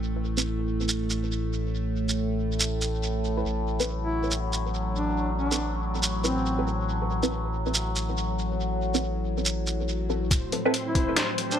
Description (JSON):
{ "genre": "deep dubstep", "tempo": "140 BPM", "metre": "4/4", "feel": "swing 62% on 16ths, half-time", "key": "A dorian", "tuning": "A4 = 441 Hz", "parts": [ { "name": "overtone-sweeping drone", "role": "sustained chords", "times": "0.0-11.6 s", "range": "A2 to A3", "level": "-30 LUFS", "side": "equal", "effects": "chorus, built-in reverb" }, { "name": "saturated sub bass", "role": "bass", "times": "0.0-10.3 s", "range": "A1", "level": "-30 LUFS", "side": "equal", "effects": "none" }, { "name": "filtered dub chord stab", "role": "stabs", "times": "0.4, 3.4-10.7 s", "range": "C4 to B4", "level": "-30 LUFS", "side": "right 1 dB", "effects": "phaser, analog chorus, tape echo" }, { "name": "trip hop sampler-style drum kit", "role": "drums", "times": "0.4-11.6 s", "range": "hi-hat, shaker, snare drum", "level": "-29 LUFS", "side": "right 1 dB", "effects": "high-pass filter on hats, high-pass filter on perc, high-pass filter on snare, high-pass filter on room, tape echo" }, { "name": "mellow duduk", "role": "melody", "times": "4.0-6.7, 10.9-11.6 s", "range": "C4 to E4", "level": "-32 LUFS", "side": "equal", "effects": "dub echo" }, { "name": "electronic kick drum", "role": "drums", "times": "10.3-11.1 s", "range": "none", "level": "-25 LUFS", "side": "equal", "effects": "none" }, { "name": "riser", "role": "sound effects", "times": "11.1-11.6 s", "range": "none", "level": "-40 LUFS", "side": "right 1 dB", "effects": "none" }, { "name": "backwards swelling texture", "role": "texture", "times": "10.4-11.6 s", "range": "C4 to C5", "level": "-31 LUFS", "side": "left 1 dB", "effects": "built-in reverb" } ], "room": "light reverb", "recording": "echo-heavy mix", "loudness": "-25 LUFS", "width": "side -9 dB against mid", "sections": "0.0-10.3 A section; 10.3-11.6 B section", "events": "build-up 10.3-11.6; filter sweep on synth drone 10.3-11.6", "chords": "0.0 N.C.; 10.3 Am", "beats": "| 0.03 0.45 0.88 1.31 | 1.74 2.17 2.60 3.03 | 3.45 3.88 4.31 4.74 | 5.17 5.60 6.03 6.45 | 6.88 7.31 7.74 8.17 | 8.60 9.03 9.45 9.88 | 10.31 10.74 11.17" }